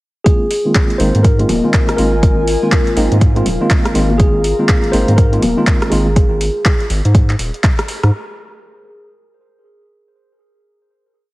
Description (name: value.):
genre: deep house.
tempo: 122 BPM.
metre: 4/4.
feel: swing 61% on 16ths.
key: Ab major.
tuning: A4 = 439 Hz.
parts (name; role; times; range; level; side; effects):
mellow tine electric piano; melody; 0.2-6.9 s; Ab4 to C5; -21 LUFS; equal; tape echo.
tine electric piano; stabs; 0.3-6.1 s; Eb3 to F4; -18 LUFS; equal; fast tremolo, sidechain pumping, low-pass filter, analog delay.
deep house drum kit; drums; 0.3-8.1 s; handclaps, hi-hat, rim click; -21 LUFS; equal; small room ambience.
electronic kick drum; drums; 0.3-7.8 s; none; -12 LUFS; equal; small room ambience.
warbly tape-like pad; texture; 1.1-6.2 s; F4 to Bb5; -24 LUFS; right 1 dB; chorus, built-in reverb, phaser, sidechain pumping.
round analog bass; bass; 1.0-8.1 s; Eb1 to Ab2; -16 LUFS; equal; sidechain pumping.
congas; percussion; 1.5-5.5 s; none; -19 LUFS; left 2 dB; overdrive, small room ambience.
room: light reverb, digital ambience.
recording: heavily compressed radio sound, cassette tape.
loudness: -11 LUFS.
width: side -19 dB against mid.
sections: 0.3-8.1 groove.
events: filter sweep on tine electric piano 0.3-6.2.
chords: 0.3 Ab69.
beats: | 0.26 0.75 1.25 1.74 | 2.23 2.72 3.21 3.70 | 4.20 4.69 5.18 5.67 | 6.16 6.66 7.15 7.64.